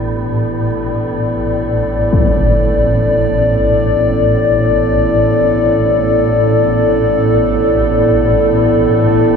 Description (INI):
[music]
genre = dark ambient drone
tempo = free time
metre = none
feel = none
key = unclear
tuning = A4 = 440 Hz
[part]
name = dark analog pad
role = sustained chords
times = 0.0-9.4 s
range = B3 to D5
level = -12 LUFS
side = left 1 dB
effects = chorus
[part]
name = swarming drone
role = drone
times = 0.0-9.4 s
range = A1 to A2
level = -16 LUFS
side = equal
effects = built-in reverb
[part]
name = quartz singing bowl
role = texture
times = 0.0-9.4 s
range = none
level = barely audible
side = none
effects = none
[part]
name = impact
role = percussion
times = 2.1-2.3 s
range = none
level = -18 LUFS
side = equal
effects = low-pass filter on sfx
[sound]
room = wet cathedral reverb, RT60 6.4 s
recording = none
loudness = -11 LUFS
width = side -6 dB against mid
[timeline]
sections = 0.0-9.4 A section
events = none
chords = 0.0 Asus2